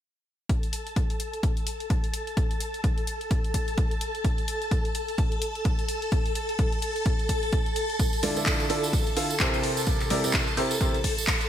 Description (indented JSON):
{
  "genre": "piano house",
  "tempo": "128 BPM",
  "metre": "4/4",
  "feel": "swing 58% on 16ths",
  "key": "D minor",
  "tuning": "A4 = 440 Hz",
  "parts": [
    { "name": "string machine, violins", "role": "sustained chords", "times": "0.5-11.5 s", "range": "A4 to A5", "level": "-31 LUFS", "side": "equal", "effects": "ensemble chorus, sidechain pumping" },
    { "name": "electronic kick drum", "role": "drums", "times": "0.5-11.4 s", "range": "none", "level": "-26 LUFS", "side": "equal", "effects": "small room ambience" },
    { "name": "house drum kit", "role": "drums", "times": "0.5-11.5 s", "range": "handclaps, hi-hat", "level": "-32 LUFS", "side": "left 1 dB", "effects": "small room ambience, gated reverb" },
    { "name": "tambourine and congas", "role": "percussion", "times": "8.0-11.5 s", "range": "none", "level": "-34 LUFS", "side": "right 4 dB", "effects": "none" },
    { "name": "clear upright piano", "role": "riff", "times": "8.2-10.9 s", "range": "C3 to F5", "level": "-28 LUFS", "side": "right 2 dB", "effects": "sidechain pumping, digital delay" }
  ],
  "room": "light reverb, studio reverb",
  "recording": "bright 1980s-style digital production",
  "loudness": "-24 LUFS",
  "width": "side -10 dB against mid",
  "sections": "0.5-11.5 A section",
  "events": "none",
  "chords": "0.5 N.C.; 8.0 Dmadd9; 9.6 C7"
}